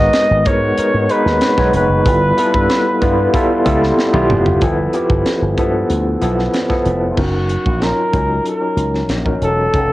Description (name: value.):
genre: polished 1980s jazz-funk pop.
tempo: 94 BPM.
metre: 4/4.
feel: straight.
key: unclear.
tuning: A4 = 439 Hz.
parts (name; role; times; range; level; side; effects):
breathy flugelhorn; melody; 0.0-9.9 s; F4 to D#5; -17 LUFS; equal; cassette tape, plate reverb.
overdriven tine electric piano; accompaniment; 0.0-9.9 s; F3 to C#5; -16 LUFS; equal; fast tremolo, lush chorus, cassette tape.
slap bass with an envelope filter; bass; 0.0-9.9 s; E1 to G#2; -18 LUFS; equal; none.
tight funk drum kit; drums; 0.1-9.9 s; crash cymbal, hi-hat, kick drum, snare drum, toms; -20 LUFS; equal; cassette tape.
congas; percussion; 0.2-7.0 s; none; -30 LUFS; right 3 dB; none.
room: moderate studio reverb, RT60 0.5 s.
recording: home recording on cassette.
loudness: -13 LUFS.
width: side -17 dB against mid.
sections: 0.0-4.6 A section; 4.6-7.2 B section; 7.2-9.9 C section.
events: drum fill 4.0-4.6.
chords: 0.0 G#m9; 2.1 G13; 7.2 F#6.